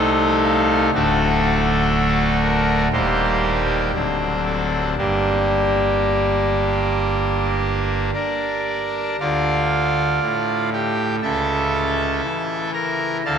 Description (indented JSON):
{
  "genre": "classical, chorale-style piece for pipe organ",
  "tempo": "59 BPM",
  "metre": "4/4",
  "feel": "rubato",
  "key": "G minor, D minor from 9.2 s",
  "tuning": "A4 = 440 Hz",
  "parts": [
    { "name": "pipe organ, trumpet", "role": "solo", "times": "0.0-13.4 s", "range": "D1 to Bb5", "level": "-17 LUFS", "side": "equal", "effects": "none" }
  ],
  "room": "wet cathedral reverb, RT60 6.8 s",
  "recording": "none",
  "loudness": "-17 LUFS",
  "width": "side -7 dB against mid",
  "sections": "0.0-9.2 A section; 9.2-13.4 B section",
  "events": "none",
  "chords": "0.0 Adim/C; 0.9 D; 2.9 Eb; 3.9 D7; 5.0 Gm; 9.2 Dm; 11.2 A/C#"
}